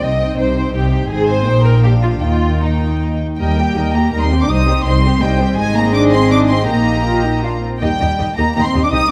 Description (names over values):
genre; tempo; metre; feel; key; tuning
quick classical-period movement for string orchestra; 163 BPM; 3/4; rubato; Eb major; A4 = 440 Hz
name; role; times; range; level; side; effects
warm studio violin section; melody; 0.0-9.1 s; F5 to Eb6; -24 LUFS; equal; none
rich studio violin section; second line; 0.0-9.0 s; Eb4 to G5; -23 LUFS; equal; none
dark studio viola section; accompaniment; 0.0-9.1 s; G3 to G4; -23 LUFS; equal; none
dark studio cello section; bass; 0.0-9.1 s; Ab2 to Eb4; -22 LUFS; equal; none
warm studio double bass section; bass; 0.0-9.0 s; Ab1 to Eb2; -19 LUFS; equal; none
room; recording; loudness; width
moderate concert hall reverb, RT60 1.8 s; vinyl crackle; -15 LUFS; mono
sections
0.0-3.4 A section; 3.4-9.1 B section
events
none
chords
0.0 Cm; 1.1 Ab; 1.5 Eb/Bb; 1.8 Bb; 2.2 Eb; 4.5 Cm; 5.6 Ab; 6.7 Eb/Bb; 7.4 Bb5; 7.8 Eb